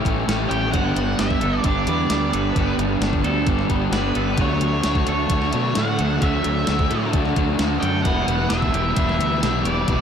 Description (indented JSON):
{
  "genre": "rock, shoegaze and dream pop",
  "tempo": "131 BPM",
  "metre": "4/4",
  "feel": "straight",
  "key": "unclear",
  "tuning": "A4 = 439 Hz",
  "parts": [
    { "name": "twangy electric guitar", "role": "arpeggios", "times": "0.0-10.0 s", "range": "E3 to A4", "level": "-31 LUFS", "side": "right 1 dB", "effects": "wide subtle chorus, tape echo" },
    { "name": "overdriven semi-hollow guitar", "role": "riff", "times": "0.0-10.0 s", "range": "E2 to G4", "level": "-24 LUFS", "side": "left 7 dB", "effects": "analog chorus" },
    { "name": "raw garage guitar", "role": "riff", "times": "0.0-10.0 s", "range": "G2 to E4", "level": "-25 LUFS", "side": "right 9 dB", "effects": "overdrive, reverse reverb" },
    { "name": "fuzz fingered electric bass", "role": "bass", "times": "0.0-10.0 s", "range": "E1 to B2", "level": "-24 LUFS", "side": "equal", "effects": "overdrive" },
    { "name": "crisp 8-bit digital drum machine", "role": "drums", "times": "0.1-10.0 s", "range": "hi-hat, kick drum, snare drum", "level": "-25 LUFS", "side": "equal", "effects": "overdrive" },
    { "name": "octave-fuzz lead guitar", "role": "melody", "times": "0.5-10.0 s", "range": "B4 to G5", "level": "-26 LUFS", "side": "right 1 dB", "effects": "distortion, tape echo" }
  ],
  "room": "wet lush hall reverb, RT60 1.8 s, digital ambience",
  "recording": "dreamy mix soaked in reverb",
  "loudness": "-18 LUFS",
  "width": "side -8 dB against mid",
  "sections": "0.0-10.0 A section",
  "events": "none",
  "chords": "0.0 A7; 0.7 Gadd9; 4.4 Dmaj7; 8.0 Em7"
}